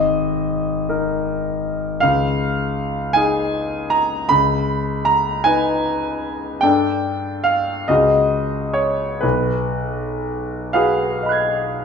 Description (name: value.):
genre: classical, impressionist solo piano.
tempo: 38-54 BPM (dotted quarters).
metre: 6/8.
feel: rubato.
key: B lydian.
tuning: A4 = 440 Hz.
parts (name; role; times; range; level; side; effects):
clear concert grand piano; solo; 0.0-11.8 s; G#1 to G#6; -17 LUFS; equal; none.
room: wet recital hall reverb, RT60 1.5 s.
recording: minimal, uncompressed stereo recording.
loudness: -17 LUFS.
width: side -6 dB against mid.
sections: 0.0-11.8 A section.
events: none.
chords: 0.0 G#sus2; 2.0 C#add9; 4.3 B6/C#; 6.6 Gsus2; 7.9 C#sus24; 9.2 B6.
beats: 0.90 | 2.03 3.16 | 4.31 5.46 | 6.63 7.89 | 9.23 10.76.